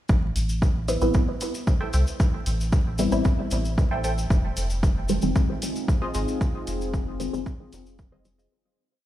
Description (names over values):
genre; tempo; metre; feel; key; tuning
dub techno; 114 BPM; 4/4; straight; unclear; A4 = 440 Hz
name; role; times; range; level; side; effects
warm sub bass; bass; 0.1-8.5 s; F1 to C2; -26 LUFS; equal; sidechain pumping
electronic kick drum; drums; 0.1-8.1 s; none; -22 LUFS; equal; none
cabasa; percussion; 0.1-8.5 s; none; -38 LUFS; left 3 dB; none
electronic hi-hat; drums; 0.4-8.4 s; none; -38 LUFS; right 3 dB; none
filtered dub chord stab; stabs; 0.9-8.4 s; Eb3 to E4; -28 LUFS; equal; phaser, sidechain pumping, dub echo
filtered dub chord stab; riff; 1.8-8.5 s; F4 to G5; -35 LUFS; right 2 dB; phaser, lush chorus, sidechain pumping, dub echo
deep dark ambient pad; sustained chords; 5.2-8.5 s; C4 to Ab4; -33 LUFS; left 1 dB; chorus, built-in reverb, sidechain pumping
room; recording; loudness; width
little or no reverb; played on a big sound system in a bare room, stone room reverb, vinyl crackle; -22 LUFS; side -13 dB against mid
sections
0.1-8.5 groove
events
fade-out 5.7-8.5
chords
0.1 Am7; 4.3 Fm7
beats
| 0.09 0.62 1.15 1.67 | 2.20 2.73 3.25 3.78 | 4.30 4.83 5.36 5.88 | 6.41 6.94 7.46 7.99